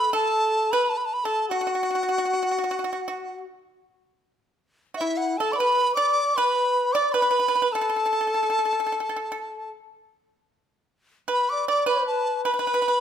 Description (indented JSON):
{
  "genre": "chinese traditional, Chinese chamber ensemble",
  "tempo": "77 BPM",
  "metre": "4/4",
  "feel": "straight",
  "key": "unclear",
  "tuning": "A4 = 436 Hz",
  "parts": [
    { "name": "mellow hollow dizi", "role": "melody", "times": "0.0-13.0 s", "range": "E5 to D6", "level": "-24 LUFS", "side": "right 1 dB", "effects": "none" },
    { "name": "low xiao", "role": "second line", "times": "0.0-13.0 s", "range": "E4 to D5", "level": "-28 LUFS", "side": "left 4 dB", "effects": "none" },
    { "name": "pipa", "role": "second line", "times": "0.0-13.0 s", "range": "E4 to D5", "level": "-28 LUFS", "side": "right 4 dB", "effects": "none" }
  ],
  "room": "moderate recital hall reverb, RT60 1.5 s",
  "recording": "minimal, uncompressed stereo recording",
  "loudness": "-21 LUFS",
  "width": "side -9 dB against mid",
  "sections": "0.0-13.0 A section",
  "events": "none",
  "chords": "none",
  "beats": "| 0.74 1.52 2.29 3.07 | 3.84 4.62 5.39 6.17 | 6.95 7.73 8.51 9.31 | 10.11 10.90 11.69 12.47"
}